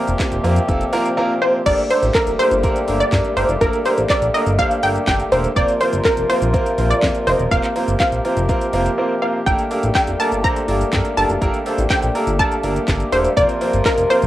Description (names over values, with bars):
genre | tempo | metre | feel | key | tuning
dance-pop | 123 BPM | 4/4 | straight | G minor | A4 = 438 Hz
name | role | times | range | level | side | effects
wide unison pluck | melody | 0.0-14.3 s | Bb3 to Bb5 | -19 LUFS | equal | cassette tape, tape echo
clear concert grand piano | accompaniment | 0.0-14.2 s | Bb3 to Eb5 | -22 LUFS | right 2 dB | sidechain pumping, cassette tape
pedal harmonium | sustained chords | 0.0-14.3 s | Bb2 to Bb4 | -24 LUFS | left 2 dB | sidechain pumping, cassette tape
chorused synth bass | bass | 0.1-14.3 s | E1 to G2 | -21 LUFS | equal | sidechain pumping
house drum kit | drums | 0.1-14.3 s | crash cymbal, handclaps, hi-hat, kick drum, shaker, snare drum | -23 LUFS | equal | cassette tape
room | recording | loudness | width
light reverb, digital ambience | home recording on cassette | -15 LUFS | side -14 dB against mid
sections
0.0-1.7 A section; 1.7-14.3 B section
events
silent gap 9.0-9.5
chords
0.0 Fsus4; 1.7 Gmadd9; 5.6 Fsus4; 9.5 Gmadd9; 13.4 Fsus4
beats
0.20 0.69 1.17 | 1.66 2.15 2.64 3.12 | 3.61 4.10 4.59 5.08 | 5.56 6.05 6.54 7.03 | 7.51 8.00 8.49 8.98 | 9.47 9.95 10.44 10.93 | 11.42 11.90 12.39 12.88 | 13.37 13.86